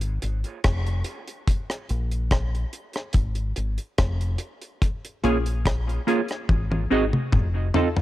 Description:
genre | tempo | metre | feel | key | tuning
dub reggae | 72 BPM | 4/4 | straight | unclear | A4 = 439 Hz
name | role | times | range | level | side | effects
deep dub fingered electric bass | bass | 0.0-7.7 s | F1 to Bb1 | -26 LUFS | left 1 dB | tube saturation
deep reggae drum kit | drums | 0.0-8.0 s | hi-hat, kick drum, rim click, toms | -24 LUFS | left 1 dB | none
mellow electric guitar | accompaniment | 5.2-8.0 s | Bb3 to Eb5 | -26 LUFS | right 7 dB | dub echo
filtered dub chord stab | stabs | 5.2-7.9 s | Bb3 to A4 | -29 LUFS | left 8 dB | phaser, dub echo
room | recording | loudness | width
studio ambience | home recording on cassette | -22 LUFS | side -15 dB against mid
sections
0.0-8.0 A section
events
break 0.0-4.8; drum fill 6.5-8.0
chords
0.0 Fm; 1.5 N.C.; 3.1 Fm; 4.8 Bbm7; 6.5 Ab7; 7.3 F7

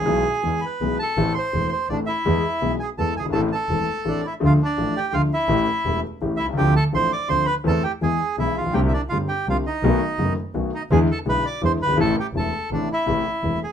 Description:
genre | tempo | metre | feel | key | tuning
tango | 166 BPM | 3/4 | rubato | A harmonic minor, A minor from 4.4 s | A4 = 439 Hz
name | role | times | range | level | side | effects
bandoneon | melody | 0.0-13.7 s | D4 to D6 | -24 LUFS | right 2 dB | none
warm concert grand piano | accompaniment | 0.0-13.6 s | E1 to A4 | -23 LUFS | left 3 dB | none
warm double bass | bass | 0.0-13.6 s | E1 to E2 | -25 LUFS | right 2 dB | none
room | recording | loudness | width
moderate studio reverb, RT60 0.6 s | minimal, uncompressed stereo recording | -19 LUFS | side -8 dB against mid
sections
0.0-4.4 A section; 4.4-13.1 B section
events
none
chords
0.0 E; 1.2 Am; 2.3 E; 3.3 Am; 4.4 Dm; 5.5 A7; 6.6 Dm7; 7.7 Am/E; 8.0 E; 8.7 Csus2; 9.8 B7; 10.9 E7; 12.0 Am

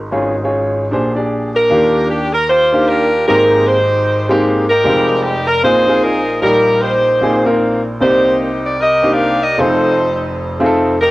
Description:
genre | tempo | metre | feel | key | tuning
gospel | 152 BPM | 4/4 | swing 60% on 8ths | Eb major | A4 = 440 Hz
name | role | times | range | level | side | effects
warm upright piano | accompaniment | 0.0-11.1 s | F1 to D5 | -15 LUFS | equal | cassette tape
bright saxophone section | melody | 1.5-11.1 s | D4 to F5 | -13 LUFS | equal | cassette tape, tape echo
room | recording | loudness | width
wet small room reverb, RT60 0.5 s | home recording on cassette | -11 LUFS | side -18 dB against mid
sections
0.0-1.7 A section; 1.7-11.1 B section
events
none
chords
0.1 Db/Ab; 0.9 Bb13; 1.7 Ebmaj9; 3.3 Abmaj9; 4.9 Fm9; 5.6 Bb9sus4; 6.4 Eb/Bb; 7.2 Bb9sus4; 8.0 Cm9; 9.6 F7

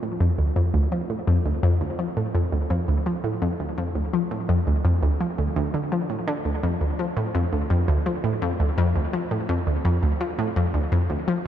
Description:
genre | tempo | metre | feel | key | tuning
ambient | 84 BPM | 4/4 | straight | D minor | A4 = 440 Hz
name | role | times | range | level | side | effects
analog pluck | solo | 0.0-11.3 s | D2 to F3 | -21 LUFS | equal | chorus, analog delay
room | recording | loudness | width
moderate huge ambient reverb, RT60 7.9 s | dark, warm production | -21 LUFS | side -10 dB against mid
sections
0.0-11.5 A section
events
none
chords
none

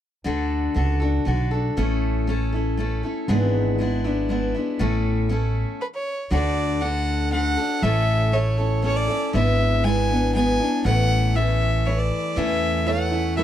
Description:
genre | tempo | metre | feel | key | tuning
honky-tonk and classic country | 119 BPM | 3/4 | straight | D major | A4 = 439 Hz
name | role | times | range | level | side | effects
picked steel-string acoustic guitar | accompaniment | 0.2-13.4 s | G#2 to A4 | -24 LUFS | left 2 dB | none
upright bass | bass | 0.3-13.4 s | G#1 to E2 | -23 LUFS | right 1 dB | none
clear fiddle | melody | 5.8-13.4 s | B4 to G#5 | -25 LUFS | equal | none
tack piano | accompaniment | 12.9-13.4 s | E4 to C#5 | -26 LUFS | right 11 dB | none
room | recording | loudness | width
light reverb | dry, close 1970s-style studio recording | -20 LUFS | side -10 dB against mid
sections
0.3-6.3 A section; 6.3-13.4 B section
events
stop 5.8-6.3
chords
0.3 D; 1.8 A; 3.3 E7/G#; 4.8 A; 6.3 D; 7.8 A; 9.3 E7/G#; 10.9 A

